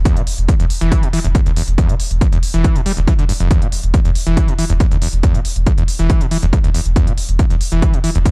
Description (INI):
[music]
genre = driving peak-time techno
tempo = 139 BPM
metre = 4/4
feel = straight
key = unclear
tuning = A4 = 439 Hz
[part]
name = warm sub bass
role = bass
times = 0.0-8.3 s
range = E1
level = -17 LUFS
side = equal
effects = sidechain pumping, low-pass filter
[part]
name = screaming distorted acid line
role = riff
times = 0.1-8.3 s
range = D2 to G3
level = -20 LUFS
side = equal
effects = distortion, chorus, sidechain pumping, analog delay
[part]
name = electronic hi-hat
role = drums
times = 0.1-8.3 s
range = none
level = -27 LUFS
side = equal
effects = sidechain pumping on hats, sidechain pumping on cymbals
[part]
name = electronic kick drum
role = drums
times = 0.1-8.3 s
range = none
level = -14 LUFS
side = equal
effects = none
[sound]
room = little or no reverb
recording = dry, gritty hardware recording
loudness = -12 LUFS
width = side -31 dB against mid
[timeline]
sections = 0.0-8.3 A section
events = none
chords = 0.0 E5